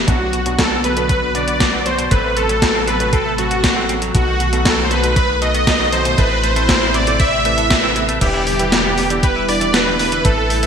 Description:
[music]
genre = synthwave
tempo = 118 BPM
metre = 4/4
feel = straight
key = E minor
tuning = A4 = 440 Hz
[part]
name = chorused pulse-width pad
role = sustained chords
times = 0.0-10.7 s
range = C3 to B4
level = -25 LUFS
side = equal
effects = sidechain pumping
[part]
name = clear electric grand piano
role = stabs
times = 0.0-10.7 s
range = F#3 to D5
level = -27 LUFS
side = right 2 dB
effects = digital delay
[part]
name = tight sequencer bass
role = bass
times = 0.0-10.7 s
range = E1 to B1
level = -22 LUFS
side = equal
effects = sidechain pumping
[part]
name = soft supersaw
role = melody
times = 0.1-10.7 s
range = F#4 to E5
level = -18 LUFS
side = equal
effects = cassette tape, digital delay
[part]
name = string machine, violins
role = second line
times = 0.1-10.7 s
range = F#4 to E5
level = -27 LUFS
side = equal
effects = none
[part]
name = clean electric guitar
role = riff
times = 0.1-10.7 s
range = B2 to A4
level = -28 LUFS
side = right 2 dB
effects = analog chorus, low-pass filter, digital delay
[part]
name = electronic kick drum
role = drums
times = 0.1-10.3 s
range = none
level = -19 LUFS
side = equal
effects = overdrive
[part]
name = gated 80s digital drum machine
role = drums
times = 0.1-10.7 s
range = crash cymbal, hi-hat, snare drum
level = -19 LUFS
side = equal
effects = gated reverb, gated reverb snare, overdrive
[sound]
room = moderate lush hall reverb, RT60 2.1 s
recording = bright 1980s-style digital production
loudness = -13 LUFS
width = side -7 dB against mid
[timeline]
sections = 0.1-8.2 A section; 8.2-10.7 B section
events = filter sweep on clean electric guitar 0.1-8.2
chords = 0.1 Bm; 2.1 F#dim/A; 4.1 B7; 6.2 Amadd9; 8.2 Em7

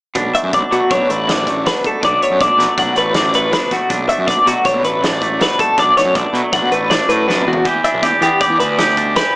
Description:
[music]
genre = math rock and midwest emo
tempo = 160 BPM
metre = 5/4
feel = straight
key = B minor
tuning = A4 = 440 Hz
[part]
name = loose indie drum kit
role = drums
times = 0.1-9.2 s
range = hi-hat, kick drum, snare drum, toms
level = -21 LUFS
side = equal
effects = none
[part]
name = twangy electric guitar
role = accompaniment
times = 0.2-9.4 s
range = F#2 to G4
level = -18 LUFS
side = right 1 dB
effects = none
[part]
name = fuzz picked electric bass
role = bass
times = 0.2-9.2 s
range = A1 to E3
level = -21 LUFS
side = equal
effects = overdrive
[part]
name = twelve-string electric guitar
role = arpeggios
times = 0.3-9.3 s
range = F#4 to F#5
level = -15 LUFS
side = left 1 dB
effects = tremolo
[sound]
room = light reverb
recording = small speaker sound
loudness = -12 LUFS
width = side -22 dB against mid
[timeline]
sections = 0.2-9.4 A section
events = drum fill 7.3-7.7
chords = 0.2 Bm7; 7.7 Em7

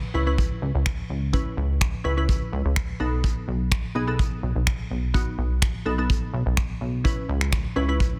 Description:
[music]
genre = dance-pop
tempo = 126 BPM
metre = 4/4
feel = straight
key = C# minor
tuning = A4 = 441 Hz
[part]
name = plucky analog bass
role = bass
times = 0.0-8.1 s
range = B1 to C#2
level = -28 LUFS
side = equal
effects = sidechain pumping
[part]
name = glassy wavetable pluck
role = accompaniment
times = 0.1-8.2 s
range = B3 to B4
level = -32 LUFS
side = equal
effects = chorus, sidechain pumping
[part]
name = vintage brush drum kit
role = drums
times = 0.4-8.1 s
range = finger snaps, kick drum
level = -28 LUFS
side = equal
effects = soft clipping on snare
[sound]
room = small room ambience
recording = dense, heavily limited modern master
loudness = -25 LUFS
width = mono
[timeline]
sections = 0.0-8.2 A section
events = none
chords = 0.0 C#m7; 3.0 B7; 7.0 C#m7

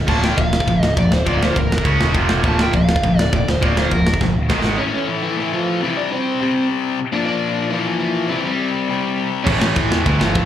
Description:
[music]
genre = punk rock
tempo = 205 BPM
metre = 4/4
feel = straight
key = unclear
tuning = A4 = 439 Hz
[part]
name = growling picked electric bass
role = bass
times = 0.0-4.8, 9.5-10.5 s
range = D1 to E2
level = -20 LUFS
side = equal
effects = overdrive
[part]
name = overdriven semi-hollow guitar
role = melody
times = 0.1-10.5 s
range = E3 to A5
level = -22 LUFS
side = equal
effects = slapback echo, ping-pong delay
[part]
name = distorted electric guitar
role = riff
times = 0.1-10.5 s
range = F2 to C#4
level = -21 LUFS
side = left 7 dB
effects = overdrive, slapback echo
[part]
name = distorted electric guitar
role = riff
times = 0.1-4.8, 9.4-10.5 s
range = F2 to C#4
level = -22 LUFS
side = right 7 dB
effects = distortion, slapback echo
[part]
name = tight metal drum kit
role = drums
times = 0.1-4.7, 9.5-10.4 s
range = crash cymbal, kick drum, ride cymbal, snare drum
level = -20 LUFS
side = equal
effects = none
[sound]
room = little or no reverb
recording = live gig heard through the venue's PA, club reverb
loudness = -16 LUFS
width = side -11 dB against mid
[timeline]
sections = 0.0-4.8 A section; 4.8-10.5 B section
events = overdriven electric guitar solo 0.0-4.8; drum fill 4.2-4.8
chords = 0.1 Bb/D; 1.8 C#5; 2.1 F5; 2.4 Bb/D; 4.5 G#5; 4.8 A; 5.8 C5; 7.1 Bb; 8.3 C; 9.5 A

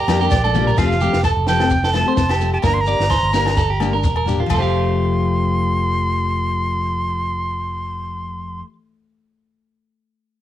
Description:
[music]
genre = highlife guitar band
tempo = 128 BPM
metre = 4/4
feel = swing 55% on 16ths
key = F major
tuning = A4 = 440 Hz
[part]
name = breathy bright jazz flute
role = melody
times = 0.0-8.6 s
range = D5 to C6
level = -22 LUFS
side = equal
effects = cassette tape
[part]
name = tonewheel organ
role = sustained chords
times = 0.0-0.8 s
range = Bb4 to G5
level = -31 LUFS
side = equal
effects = slow rotary speaker, chorus vibrato, cassette tape
[part]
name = electric guitar at the edge of break-up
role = arpeggios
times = 0.0-8.7 s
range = F4 to F5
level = -23 LUFS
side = right 7 dB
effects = cassette tape
[part]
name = picked steel-string acoustic guitar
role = accompaniment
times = 0.1-8.7 s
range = F3 to G4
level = -23 LUFS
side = left 7 dB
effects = cassette tape
[part]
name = fingered electric bass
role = bass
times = 0.1-8.6 s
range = E1 to F2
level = -21 LUFS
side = equal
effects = none
[part]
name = compact cocktail drum kit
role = drums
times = 0.1-4.6 s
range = crash cymbal, kick drum, snare drum, toms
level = -22 LUFS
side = right 1 dB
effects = cassette tape
[part]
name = agogo bells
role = percussion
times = 0.1-4.6 s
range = none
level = -30 LUFS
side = left 11 dB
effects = none
[part]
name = shekere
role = percussion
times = 0.1-4.7 s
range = none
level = -30 LUFS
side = left 4 dB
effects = none
[sound]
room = moderate studio reverb, RT60 0.5 s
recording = home recording on cassette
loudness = -16 LUFS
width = side -12 dB against mid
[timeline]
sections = 0.8-4.5 A section; 4.5-8.3 B section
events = drum fill 0.3-0.8, 3.6-4.5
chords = 0.0 Bb6; 0.8 Fadd9; 2.6 Gm; 4.5 Fadd9

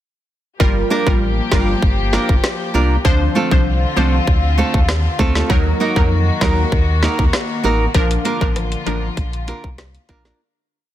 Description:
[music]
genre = dancehall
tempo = 98 BPM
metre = 4/4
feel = straight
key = Bb major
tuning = A4 = 440 Hz
[part]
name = glassy wavetable pluck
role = accompaniment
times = 0.6-9.0 s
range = F3 to C5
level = -21 LUFS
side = equal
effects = chorus
[part]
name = warm studio string section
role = sustained chords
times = 0.6-10.4 s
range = D3 to G4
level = -24 LUFS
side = left 3 dB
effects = sidechain pumping
[part]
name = sub bass with octave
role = bass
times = 0.6-10.3 s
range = G1 to F2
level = -18 LUFS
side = equal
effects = none
[part]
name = island pop drum kit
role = drums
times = 0.6-10.4 s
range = hi-hat, kick drum, rim click, snare drum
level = -17 LUFS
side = equal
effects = soft clipping on snare
[part]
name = nylon-string guitar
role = arpeggios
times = 0.9-10.4 s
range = A3 to Bb4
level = -21 LUFS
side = right 3 dB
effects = none
[sound]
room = digital ambience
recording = dense, heavily limited modern master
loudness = -14 LUFS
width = side -12 dB against mid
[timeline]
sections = 0.6-10.4 verse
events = fade-out 7.9-10.4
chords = 0.6 Gm7; 3.0 Dm7; 5.5 Ebm; 7.9 Bb

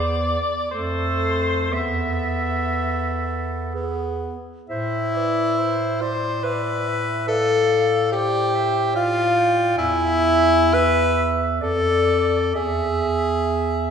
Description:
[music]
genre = classical, lyrical piece for single-reed quartet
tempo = 57-73 BPM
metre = 3/4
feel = rubato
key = A minor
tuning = A4 = 440 Hz
[part]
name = mellow soprano saxophone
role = melody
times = 0.0-13.9 s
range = C5 to G#5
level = -27 LUFS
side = left 1 dB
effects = none
[part]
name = mellow clarinet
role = second line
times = 0.0-13.9 s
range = G#4 to E5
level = -28 LUFS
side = right 5 dB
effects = none
[part]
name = clear tenor saxophone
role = accompaniment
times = 0.0-13.9 s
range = A3 to C5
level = -21 LUFS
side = left 2 dB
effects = none
[part]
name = mellow bass clarinet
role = bass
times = 0.0-13.9 s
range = E2 to A2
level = -26 LUFS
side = right 2 dB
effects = none
[sound]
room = wet scoring stage reverb, RT60 1.7 s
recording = heard from further back in the room, nothing above 10.8 kHz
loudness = -18 LUFS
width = side -7 dB against mid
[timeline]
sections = 0.0-4.7 A section; 4.7-13.9 B section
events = none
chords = 0.0 E; 0.7 F; 1.7 Esus4; 4.7 Am; 7.3 Dm/A; 9.8 E; 11.6 Dm/F; 12.6 E

